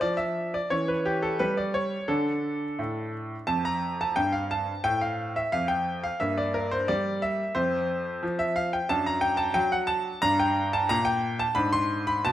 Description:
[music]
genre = classical-period piano sonatina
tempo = 89 BPM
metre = 4/4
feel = rubato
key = unclear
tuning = A4 = 440 Hz
[part]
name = clear baby grand piano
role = solo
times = 0.0-12.3 s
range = F2 to C6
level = -24 LUFS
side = equal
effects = none
[sound]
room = moderate recital hall reverb, RT60 1.4 s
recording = none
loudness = -24 LUFS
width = side -12 dB against mid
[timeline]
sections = 0.0-12.3 A section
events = none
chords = 0.0 Dm; 0.7 C#dim/E; 2.1 D5; 3.5 F; 6.2 Gm6; 7.6 F5; 8.9 D/F#; 10.2 Gm; 11.6 G#dim

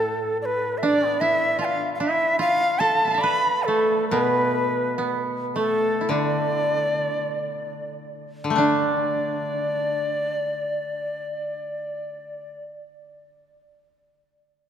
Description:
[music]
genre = japanese traditional, Japanese chamber music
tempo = 46-78 BPM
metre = 4/4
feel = rubato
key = D kumoi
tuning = A4 = 440 Hz
[part]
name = breathy bright shakuhachi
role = melody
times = 0.0-12.6 s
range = A4 to B5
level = -23 LUFS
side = equal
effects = none
[part]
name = koto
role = accompaniment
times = 0.0-12.7 s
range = A2 to D4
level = -29 LUFS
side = left 4 dB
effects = none
[part]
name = koto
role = second line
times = 0.8-12.6 s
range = A3 to B5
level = -26 LUFS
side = right 3 dB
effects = none
[sound]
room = wet cathedral reverb, RT60 4.1 s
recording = none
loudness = -21 LUFS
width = side -8 dB against mid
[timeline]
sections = 0.0-8.6 A section; 8.6-13.5 B section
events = slowing down 0.8-8.6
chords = none

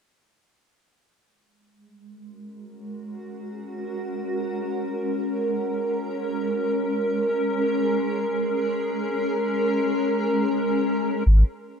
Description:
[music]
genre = ambient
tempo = free time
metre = none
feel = none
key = unclear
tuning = A4 = 440 Hz
[part]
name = granular cloud pad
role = sustained chords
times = 2.3-11.8 s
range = G#3 to A#4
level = -24 LUFS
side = equal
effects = built-in reverb
[part]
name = soft dub sub bass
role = bass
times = 11.3-11.4 s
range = G#1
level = -14 LUFS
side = equal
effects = none
[sound]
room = moderate plate reverb, RT60 3.3 s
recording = none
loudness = -22 LUFS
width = side -7 dB against mid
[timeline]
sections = 1.3-11.3 A section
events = none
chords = 1.3 G#9sus4; 11.3 G#5

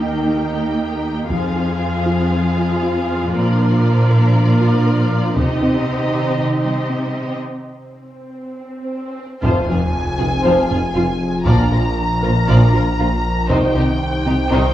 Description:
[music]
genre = cinematic, hybrid orchestral and electronic film score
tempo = 118 BPM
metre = 4/4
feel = straight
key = F dorian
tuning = A4 = 440 Hz
[part]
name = warm symphonic violin section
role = second line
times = 0.0-14.7 s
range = F4 to G5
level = -25 LUFS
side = left 2 dB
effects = none
[part]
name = warm symphonic viola section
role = accompaniment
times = 0.0-14.7 s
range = F3 to F4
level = -26 LUFS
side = right 1 dB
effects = none
[part]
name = hollow soft pad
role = sustained chords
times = 0.0-14.7 s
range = Eb3 to C5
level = -22 LUFS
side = equal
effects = chorus
[part]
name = tight sequenced synth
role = arpeggios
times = 0.0-14.7 s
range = C3 to Bb4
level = -26 LUFS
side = equal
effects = none
[part]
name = warm symphonic cello section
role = bass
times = 0.0-14.6 s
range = Eb2 to C3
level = -19 LUFS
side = right 1 dB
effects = none
[part]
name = taiko ensemble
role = drums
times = 1.3-2.3, 5.4-5.8, 9.4-14.0 s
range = none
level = -24 LUFS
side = equal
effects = none
[part]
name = swell and sub drop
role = sound effects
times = 8.2-11.5 s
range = none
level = -27 LUFS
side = equal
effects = none
[part]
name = rich studio violin section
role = melody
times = 9.4-14.7 s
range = G5 to Bb5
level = -24 LUFS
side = left 2 dB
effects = none
[part]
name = clear trombone section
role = sustained chords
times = 9.4-14.7 s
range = Bb2 to F3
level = -27 LUFS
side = right 3 dB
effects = none
[part]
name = warm French horn section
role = sustained chords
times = 9.4-14.7 s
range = G3 to Eb4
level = -28 LUFS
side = left 2 dB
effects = none
[part]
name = phased detuned saw bass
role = bass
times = 9.4-14.7 s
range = F1 to C2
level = -23 LUFS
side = equal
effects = phaser
[part]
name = rich symphonic double bass section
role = bass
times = 9.4-14.6 s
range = F1 to C2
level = -20 LUFS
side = right 1 dB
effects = none
[part]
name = warm tuba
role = bass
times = 9.4-14.6 s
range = F1 to C2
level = -25 LUFS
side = right 1 dB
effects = none
[sound]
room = moderate concert hall reverb, RT60 1.8 s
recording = worn, warbling old tape, cassette tape, warbly pitch drift, small room ambience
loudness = -15 LUFS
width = side -13 dB against mid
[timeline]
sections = 0.0-9.4 A section; 9.4-14.7 A section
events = break 7.4-9.4; swell 8.2-9.4; drum fill 8.7-9.4; impact 9.4-11.5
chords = 0.0 Eb; 1.3 Fm; 3.3 Bb; 5.4 Cm; 7.4 N.C.; 9.4 Fm; 11.5 Bb; 13.5 Cm

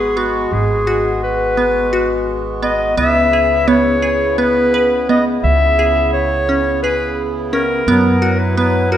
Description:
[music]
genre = contemporary instrumental, chamber music in an uneven meter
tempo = 171 BPM (eighths)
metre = 7/8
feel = straight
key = unclear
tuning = A4 = 440 Hz
[part]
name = clear clarinet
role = melody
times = 0.0-9.0 s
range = F#4 to E5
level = -16 LUFS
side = left 2 dB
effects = none
[part]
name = hand-pumped harmonium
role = sustained chords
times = 0.0-9.0 s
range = C#3 to F#4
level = -21 LUFS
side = right 1 dB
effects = none
[part]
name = glassy wavetable pluck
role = arpeggios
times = 0.0-9.0 s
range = B3 to B4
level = -18 LUFS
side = right 2 dB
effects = chorus
[part]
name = upright bass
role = bass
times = 0.0-9.0 s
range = G#1 to F#2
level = -21 LUFS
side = right 1 dB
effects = none
[sound]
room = wet recital hall reverb, RT60 1.6 s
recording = none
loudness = -13 LUFS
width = side -10 dB against mid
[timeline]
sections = 0.0-9.0 A section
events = none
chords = 0.0 G#m7; 3.0 C#m7; 7.9 F#7sus4

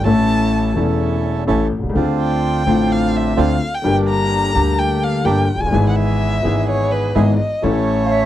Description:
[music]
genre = tango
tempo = 127 BPM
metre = 4/4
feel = rubato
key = unclear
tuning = A4 = 440 Hz
[part]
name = dark violin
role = second line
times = 0.0-8.3 s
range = B4 to Bb5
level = -21 LUFS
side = left 1 dB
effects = none
[part]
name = warm concert grand piano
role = accompaniment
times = 0.0-8.3 s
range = E1 to A4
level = -17 LUFS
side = left 3 dB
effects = none
[part]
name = bandoneon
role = stabs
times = 0.0-8.3 s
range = Bb3 to A4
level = -24 LUFS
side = right 9 dB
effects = none
[part]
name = upright bass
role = bass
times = 0.0-8.3 s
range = E1 to D2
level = -22 LUFS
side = right 2 dB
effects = none
[part]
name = bright baroque flute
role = second line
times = 8.0-8.3 s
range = E5 to F5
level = -21 LUFS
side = right 10 dB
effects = none
[sound]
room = little or no reverb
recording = dry, close 1970s-style studio recording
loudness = -15 LUFS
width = side -12 dB against mid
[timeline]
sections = 0.0-8.3 A section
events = violin solo 0.0-8.3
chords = 0.1 A; 2.0 Dm7; 3.9 Gm; 5.7 E/G#; 7.6 A

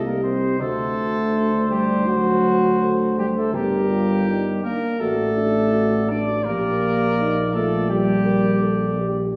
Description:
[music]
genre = classical, brass quintet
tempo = 82 BPM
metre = 4/4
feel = straight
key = G minor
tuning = A4 = 440 Hz
[part]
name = dark cornet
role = melody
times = 0.0-9.3 s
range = Bb4 to Eb5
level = -29 LUFS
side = equal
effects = none
[part]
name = dark French horn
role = accompaniment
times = 0.0-9.4 s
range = D4 to Bb4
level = -30 LUFS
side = equal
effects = none
[part]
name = dark euphonium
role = accompaniment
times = 0.0-9.1 s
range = F#3 to D4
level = -25 LUFS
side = equal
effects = none
[part]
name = mellow tuba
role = bass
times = 0.0-9.3 s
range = G1 to D2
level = -26 LUFS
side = equal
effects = none
[part]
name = mellow trumpet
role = second line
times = 0.1-9.1 s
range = F#4 to D5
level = -31 LUFS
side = equal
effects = none
[sound]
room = wet recital hall reverb, RT60 1.3 s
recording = heard from further back in the room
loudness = -20 LUFS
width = mono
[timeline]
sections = 0.0-9.4 A section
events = none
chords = 0.0 Cm; 0.6 D7; 3.5 Gm; 5.0 D5/A; 6.4 Gm/Bb

